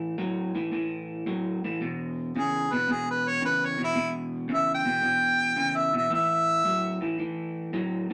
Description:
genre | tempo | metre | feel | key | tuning
blues | 111 BPM | 4/4 | swing 68% on 8ths | unclear | A4 = 440 Hz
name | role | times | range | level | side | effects
electric guitar through a small old amp | riff | 0.0-8.1 s | E2 to F#3 | -32 LUFS | equal | none
clear harmonica | melody | 2.4-7.2 s | E4 to G5 | -26 LUFS | equal | overdrive
room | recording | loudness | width
wet studio reverb, RT60 0.5 s | none | -27 LUFS | mono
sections
0.0-8.1 A section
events
none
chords
0.0 A5; 1.8 E5; 6.1 A5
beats
0.19 0.73 1.27 | 1.81 2.35 2.89 3.43 | 3.97 4.51 5.05 5.58 | 6.12 6.66 7.20 7.73

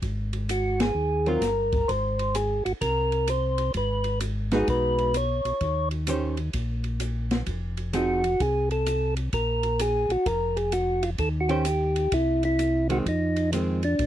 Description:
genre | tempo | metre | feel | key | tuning
soul jazz organ trio | 129 BPM | 4/4 | swing 66% on 8ths | unclear | A4 = 438 Hz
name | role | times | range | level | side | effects
tonewheel organ | bass | 0.0-14.1 s | F1 to F2 | -28 LUFS | equal | slow rotary speaker
open jazz drum kit | drums | 0.0-14.1 s | hi-hat, kick drum, ride cymbal, snare drum | -33 LUFS | equal | none
percussive tonewheel organ | melody | 0.5-14.1 s | D4 to Db5 | -25 LUFS | equal | slow rotary speaker
archtop guitar, miked and amplified | accompaniment | 1.3-1.4, 4.5-8.2, 11.5-13.8 s | Eb3 to C5 | -27 LUFS | right 2 dB | none
room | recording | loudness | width
little or no reverb | dry, close 1970s-style studio recording | -23 LUFS | side -12 dB against mid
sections
0.0-14.1 A section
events
band accent 0.7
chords
0.0 Ab9; 3.8 Abm7; 5.6 Eb6; 7.5 Fm7; 9.3 Bb5; 11.2 Eb6; 12.1 Caug; 13.1 Fm7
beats
| 0.03 0.49 0.96 1.42 | 1.89 2.35 2.82 3.29 | 3.75 4.22 4.68 5.15 | 5.61 6.08 6.54 7.01 | 7.47 7.94 8.40 8.87 | 9.34 9.80 10.27 10.73 | 11.20 11.66 12.13 12.59 | 13.06 13.53 13.99

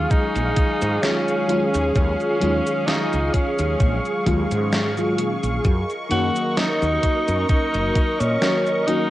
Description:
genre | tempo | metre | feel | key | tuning
vaporwave | 65 BPM | 4/4 | swing 54% on 16ths | unclear | A4 = 441 Hz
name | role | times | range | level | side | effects
warm tenor saxophone | melody | 0.0-9.1 s | C#4 to F#4 | -24 LUFS | equal | cassette tape, tape echo
FM electric piano with soft pad layer | accompaniment | 0.0-9.1 s | D#3 to F#4 | -25 LUFS | left 1 dB | tremolo, analog chorus, cassette tape
soft string machine | sustained chords | 0.0-9.1 s | G#4 to C#6 | -25 LUFS | equal | ensemble chorus, cassette tape
woody fretless electric bass | bass | 0.0-8.4 s | F#1 to A#2 | -24 LUFS | equal | lush chorus
electronic kick drum | drums | 0.1-8.2 s | none | -20 LUFS | equal | cassette tape
gated 80s digital drum machine | drums | 0.1-9.1 s | cabasa, hi-hat, snare drum | -26 LUFS | equal | gated reverb, gated reverb snare, cassette tape
room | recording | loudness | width
light reverb, digital ambience | home recording on cassette | -18 LUFS | side -15 dB against mid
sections
0.0-9.1 A section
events
none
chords
0.0 D#m11; 5.6 F#6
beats
0.11 1.03 | 1.96 2.88 3.80 4.72 | 5.65 6.57 7.49 8.42

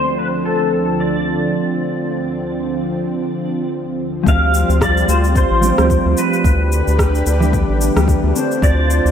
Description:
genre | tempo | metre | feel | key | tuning
sunset chillout | 110 BPM | 4/4 | swing 57% on 16ths | D dorian | A4 = 440 Hz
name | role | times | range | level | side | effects
pedal steel guitar | melody | 0.0-9.1 s | A4 to F5 | -20 LUFS | left 1 dB | ensemble chorus, analog delay
mellow electric guitar | accompaniment | 0.0-9.1 s | E3 to C5 | -22 LUFS | moving between left 5 dB and right 6 dB | auto-pan, analog delay
lush unison pad | sustained chords | 0.0-9.1 s | D2 to C5 | -20 LUFS | right 1 dB | chorus
round analog bass | bass | 4.3-9.1 s | A1 to D2 | -16 LUFS | equal | none
electronic cabasa and rim click | drums | 4.3-9.1 s | none | -24 LUFS | left 1 dB | overdrive
electronic kick drum | drums | 4.3-8.7 s | none | -18 LUFS | equal | none
room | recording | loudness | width
moderate plate reverb, RT60 3.0 s | dreamy mix soaked in reverb | -14 LUFS | side -8 dB against mid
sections
0.0-4.3 A section; 4.3-9.1 B section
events
filter sweep on clean electric guitar 0.0-4.3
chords
0.0 Dm7; 4.3 G9sus4/D; 6.4 Em7/D; 8.4 Dm7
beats
0.45 0.99 1.54 | 2.08 2.63 3.17 3.72 | 4.26 4.81 5.35 5.90 | 6.45 6.99 7.54 8.08 | 8.63

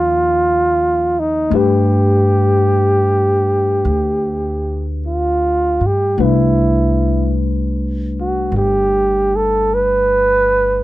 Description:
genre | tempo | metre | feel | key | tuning
jazz ballad | 51 BPM | 4/4 | swing 68% on 8ths | unclear | A4 = 445 Hz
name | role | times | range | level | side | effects
breathy flugelhorn | melody | 0.0-10.8 s | Eb4 to B4 | -15 LUFS | right 1 dB | none
tine electric piano | accompaniment | 0.0-10.8 s | F3 to G5 | -21 LUFS | moving between left 8 dB and left 2 dB | auto-pan
upright bass | bass | 0.0-10.8 s | G1 to G2 | -19 LUFS | equal | none
room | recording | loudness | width
little or no reverb | dry, close 1970s-style studio recording | -13 LUFS | side -16 dB against mid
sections
0.0-10.8 A section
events
none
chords
0.0 N.C.; 1.5 Gadd9; 6.2 Cmaj9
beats
0.34 | 1.51 2.68 3.85 5.02 | 6.18 7.35 8.52 9.70

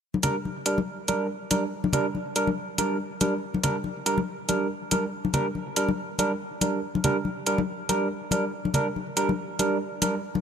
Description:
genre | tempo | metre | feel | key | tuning
deep dubstep | 141 BPM | 4/4 | swing 56% on 16ths, half-time | G minor | A4 = 440 Hz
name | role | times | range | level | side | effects
congas | percussion | 0.1-10.4 s | none | -29 LUFS | left 4 dB | dub echo
barky tine electric piano | stabs | 0.2-10.1 s | G3 to Bb4 | -26 LUFS | right 2 dB | overdrive, wide subtle chorus, low-pass filter, dub echo
electronic hi-hat | drums | 0.2-10.1 s | none | -26 LUFS | right 1 dB | overdrive, small room ambience
room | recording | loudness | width
moderate huge ambient reverb, RT60 3.9 s | none | -24 LUFS | side -7 dB against mid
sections
0.0-10.4 A section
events
none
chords
0.0 Gm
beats
| 0.02 0.45 0.87 1.30 | 1.72 2.15 2.57 3.00 | 3.42 3.85 4.28 4.70 | 5.13 5.55 5.98 6.40 | 6.83 7.25 7.68 8.11 | 8.53 8.96 9.38 9.81 | 10.23

